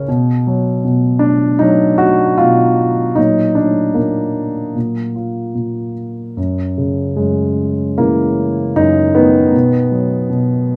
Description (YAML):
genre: classical, lyrical solo piano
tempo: 77 BPM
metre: 4/4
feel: rubato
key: unclear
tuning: A4 = 440 Hz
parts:
  - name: dark baby grand piano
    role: solo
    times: 0.0-10.8 s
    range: Gb2 to F#4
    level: -15 LUFS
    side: equal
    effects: none
room: light reverb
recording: dark, warm production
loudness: -15 LUFS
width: mono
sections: 0.0-10.8 A section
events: none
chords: 0.1 B5; 3.2 Bbaug; 4.8 Bb5; 6.4 Gb7; 9.5 B